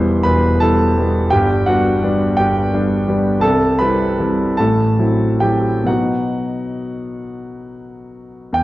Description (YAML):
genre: classical, romantic nocturne for solo piano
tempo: 43-58 BPM (dotted quarters)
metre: 6/8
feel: rubato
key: unclear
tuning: A4 = 440 Hz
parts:
  - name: clear concert grand piano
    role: solo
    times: 0.0-8.6 s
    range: E1 to C6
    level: -14 LUFS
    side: equal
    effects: none
room: wet recital hall reverb, RT60 1.4 s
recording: worn, warbling old tape, cassette tape, warbly pitch drift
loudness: -14 LUFS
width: side -16 dB against mid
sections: 0.0-8.6 A section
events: none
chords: 0.0 Em; 1.3 G; 3.4 C; 4.6 F#m7b5/A; 5.9 B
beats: 0.25 | 1.31 2.37 | 3.44 4.60 | 5.88 7.23 | 8.57